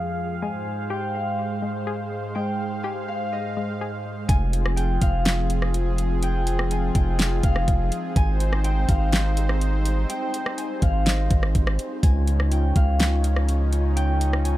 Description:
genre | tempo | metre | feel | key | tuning
hip hop, atmospheric cloud-rap | 124 BPM | 4/4 | half-time | F minor | A4 = 440 Hz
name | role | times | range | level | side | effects
Celtic harp | melody | 0.0-14.6 s | Eb5 to Ab5 | -30 LUFS | left 2 dB | low-pass filter, tape echo
warm analog pad | sustained chords | 0.0-14.6 s | F2 to F5 | -29 LUFS | right 1 dB | chorus, sidechain pumping, low-pass filter
wind-like tuned noise texture | texture | 0.0-14.6 s | F3 to Db5 | -38 LUFS | equal | built-in reverb
hollow square pluck | arpeggios | 0.4-4.3 s | Ab3 to Ab4 | -34 LUFS | left 5 dB | chorus, low-pass filter, tape echo
long sustained 808-style bass | bass | 4.3-14.6 s | F1 to Db2 | -22 LUFS | equal | none
smooth R&B drum kit | drums | 4.3-14.6 s | hi-hat, kick drum, rim click, snare drum | -23 LUFS | equal | none
room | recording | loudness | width
little or no reverb | none | -21 LUFS | side -15 dB against mid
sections
0.0-4.3 A section; 4.3-14.6 B section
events
none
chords
0.4 Abmaj7; 4.3 Fmadd9; 8.2 Abmaj7; 12.0 Dbadd9

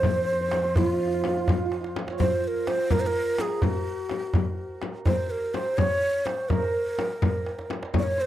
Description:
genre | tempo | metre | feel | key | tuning
Persian modal ensemble | 84 BPM (dotted quarters) | 6/8 | straight | unclear | A4 = 440 Hz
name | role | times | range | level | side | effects
breathy mellow ney | melody | 0.0-8.3 s | F4 to D5 | -27 LUFS | equal | none
santur | second line | 0.0-8.3 s | F4 to F5 | -32 LUFS | right 6 dB | none
warm cello | drone | 0.0-2.2 s | F2 | -34 LUFS | equal | none
frame drum | percussion | 0.0-8.1 s | none | -30 LUFS | left 5 dB | none
tombak | percussion | 0.0-8.1 s | none | -28 LUFS | right 1 dB | none
room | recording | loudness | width
small room ambience | dry, close 1970s-style studio recording | -23 LUFS | side -12 dB against mid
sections
0.0-2.2 A section; 2.2-8.3 B section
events
drum fill 1.7-2.2, 7.5-7.9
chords
none

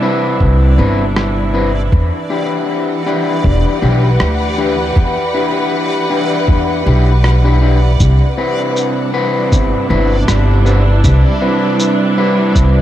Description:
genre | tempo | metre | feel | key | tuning
ambient dub | 79 BPM | 4/4 | swing 54% on 16ths | E minor | A4 = 441 Hz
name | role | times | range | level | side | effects
rich studio string section | sustained chords | 0.0-12.8 s | C3 to F#5 | -18 LUFS | right 2 dB | none
electric guitar at the edge of break-up | stabs | 0.0-12.8 s | C4 to B4 | -17 LUFS | left 3 dB | dub echo
backwards swelling texture | texture | 0.0-12.8 s | D5 | -28 LUFS | right 2 dB | built-in reverb
upright bass | bass | 0.4-12.8 s | E1 to E2 | -12 LUFS | equal | none
electronic kick drum | drums | 0.4-12.7 s | none | -13 LUFS | equal | none
electronic rim click and shaker | drums | 1.2-12.7 s | none | -20 LUFS | equal | none
room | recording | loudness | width
light reverb | none | -11 LUFS | side -12 dB against mid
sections
0.0-12.8 A section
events
none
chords
0.0 Cmaj7; 1.9 Em7; 8.0 Cmaj7

